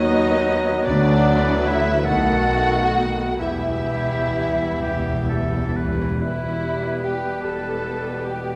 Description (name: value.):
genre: classical.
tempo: 41-53 BPM (dotted quarters).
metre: 6/8.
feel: rubato.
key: E minor.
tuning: A4 = 440 Hz.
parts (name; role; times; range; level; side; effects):
muted symphonic violin section; melody; 0.0-8.6 s; B4 to F#5; -30 LUFS; equal; none.
dark clarinet; second line; 0.0-8.6 s; B3 to A4; -35 LUFS; equal; none.
mellow hollow concert flute; second line; 0.0-8.6 s; D5 to A5; -31 LUFS; equal; none.
muted studio violin section; second line; 0.0-8.6 s; D4 to A4; -33 LUFS; equal; none.
warm oboe; second line; 0.0-8.6 s; G4 to B4; -34 LUFS; equal; none.
mellow bassoon; accompaniment; 0.0-8.6 s; D#3 to G3; -31 LUFS; equal; none.
muted symphonic viola section; accompaniment; 0.0-8.6 s; D#3 to G4; -34 LUFS; equal; none.
mellow French horn section; sustained chords; 0.0-8.6 s; B3 to B4; -30 LUFS; equal; none.
mellow trombone section; sustained chords; 0.0-8.6 s; B2 to B3; -33 LUFS; equal; none.
muted symphonic cello section; bass; 0.0-8.5 s; D2 to B2; -30 LUFS; equal; none.
muted symphonic double bass section; bass; 0.0-8.5 s; E1 to D#2; -29 LUFS; equal; none.
timpani; percussion; 3.4-6.2 s; E2; -30 LUFS; equal; none.
room: wet recital hall reverb, RT60 1.6 s.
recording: recorded in a church or concert hall.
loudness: -21 LUFS.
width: mono.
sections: 0.0-6.2 A section; 6.2-8.6 B section.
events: timpani fill 3.4-6.2.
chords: 0.0 B/D#; 0.9 Bm/D; 2.1 B7; 3.4 Em.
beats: | 0.86 2.06 | 3.39 4.83 | 6.22 7.44.